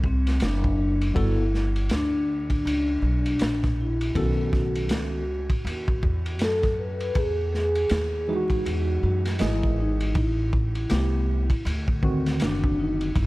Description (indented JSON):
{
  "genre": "hip hop, jazz-hop",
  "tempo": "80 BPM",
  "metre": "4/4",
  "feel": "swing 60% on 16ths",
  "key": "unclear",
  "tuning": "A4 = 440 Hz",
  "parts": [
    { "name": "vibraphone with soft mallets", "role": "melody", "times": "0.0-13.3 s", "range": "C4 to B4", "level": "-28 LUFS", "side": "left 1 dB", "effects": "ping-pong delay" },
    { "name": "upright bass", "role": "bass", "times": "0.0-13.3 s", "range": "F#1 to F#2", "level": "-26 LUFS", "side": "equal", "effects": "none" },
    { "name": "crunchy breakbeat drum kit", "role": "drums", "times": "0.0-13.3 s", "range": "hi-hat, kick drum, ride cymbal, snare drum", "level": "-28 LUFS", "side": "equal", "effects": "none" },
    { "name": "tine electric piano", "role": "accompaniment", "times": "1.1-13.1 s", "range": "C3 to D#5", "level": "-29 LUFS", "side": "equal", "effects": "medium stereo tremolo" }
  ],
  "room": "little or no reverb",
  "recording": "vinyl crackle",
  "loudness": "-22 LUFS",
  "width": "side -20 dB against mid",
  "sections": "0.0-13.3 A section",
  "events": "none",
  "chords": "0.0 D7; 1.2 G; 4.2 B9; 7.2 Emaj9; 10.2 Am9; 11.7 D7b9"
}